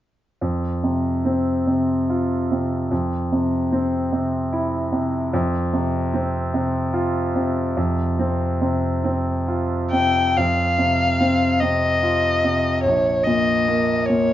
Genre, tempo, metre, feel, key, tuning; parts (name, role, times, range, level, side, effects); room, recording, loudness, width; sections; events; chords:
classical, romantic duo for violin and grand piano; 49 BPM (dotted quarters); 6/8; rubato; A4 = 439 Hz
bright concert grand piano; accompaniment; 0.4-14.3 s; Bb1 to F4; -20 LUFS; equal
warm violin; melody; 9.9-14.3 s; Db5 to G5; -19 LUFS; left 2 dB
light reverb; nothing above 7.5 kHz; -18 LUFS; side -12 dB against mid
0.4-10.4 A section; 10.4-14.3 B section
0.4 F5; 2.9 C/F; 5.3 F5; 12.8 Gdim/Bb (rootless)